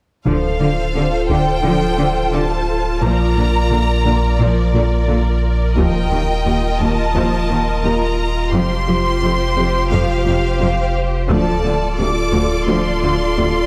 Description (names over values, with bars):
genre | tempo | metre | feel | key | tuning
cinematic, hybrid orchestral and electronic film score | 87 BPM | 4/4 | straight | D phrygian | A4 = 438 Hz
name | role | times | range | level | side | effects
rich studio violin section | melody | 0.3-13.7 s | D5 to D6 | -25 LUFS | equal | none
clear symphonic violin section | second line | 0.3-13.7 s | G4 to Eb5 | -26 LUFS | equal | none
rich symphonic viola section | accompaniment | 0.3-13.7 s | C3 to F4 | -24 LUFS | equal | none
clear symphonic cello section | bass | 0.3-13.5 s | D2 to D3 | -23 LUFS | equal | none
punchy sub bass | bass | 0.3-13.7 s | D1 to Bb1 | -22 LUFS | equal | none
taiko ensemble | drums | 0.3-1.6, 5.8-7.1, 11.3-12.7 s | none | -26 LUFS | equal | none
room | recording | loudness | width
moderate scoring stage reverb, RT60 1.6 s | none | -17 LUFS | mono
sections
0.3-13.7 A section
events
none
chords
0.3 Dm7; 3.0 Bb; 5.8 Ebadd9; 8.5 Fsus2; 11.3 Dm7